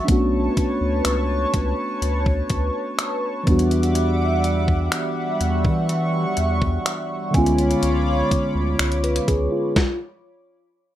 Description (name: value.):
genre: contemporary R&B.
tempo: 62 BPM.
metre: 4/4.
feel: straight.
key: unclear.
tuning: A4 = 438 Hz.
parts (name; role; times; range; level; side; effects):
mellow tine electric piano; accompaniment; 0.0-10.0 s; D3 to C#5; -23 LUFS; equal; none.
chorused pulse-width pad; sustained chords; 0.0-9.7 s; G3 to D6; -25 LUFS; equal; sidechain pumping.
worn celesta; texture; 0.0-10.8 s; E5 to G#5; -33 LUFS; right 3 dB; digital delay.
round analog bass; bass; 0.1-9.5 s; B1 to E3; -23 LUFS; equal; none.
crisp 8-bit digital drum machine; drums; 0.1-10.0 s; finger snaps, hi-hat, kick drum, snare drum; -22 LUFS; equal; none.
room: moderate studio reverb, RT60 0.5 s.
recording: rough home demo mix.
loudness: -18 LUFS.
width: side -12 dB against mid.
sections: 0.0-11.0 A section.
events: stop 9.8-11.0.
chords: 0.1 Bm9; 3.5 Em9; 7.3 C#7b9.